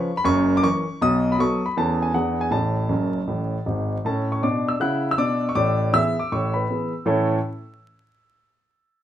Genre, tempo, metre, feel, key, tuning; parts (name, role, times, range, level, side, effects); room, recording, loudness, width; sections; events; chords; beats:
jazz, stride piano; 158 BPM; 4/4; swing 58% on 8ths; A major; A4 = 441 Hz
warm baby grand piano; solo; 0.0-7.4 s; F#1 to F#6; -20 LUFS; equal
wet studio reverb, RT60 0.8 s; minimal, uncompressed stereo recording, vinyl crackle; -20 LUFS; side -11 dB against mid
0.0-4.0 A section; 4.0-7.1 B section; 7.1-8.6 C section
grand piano fill 2.9-4.0
0.3 F#7; 1.0 B5; 1.8 A/E; 2.2 E9; 2.5 F#madd9; 4.0 D/A; 5.6 E7/A; 7.1 A
0.26 0.63 | 1.01 1.39 1.77 2.15 | 2.53 2.91 3.29 3.67 | 4.05 4.43 4.81 5.19 | 5.57 5.95 6.33 6.71 | 7.09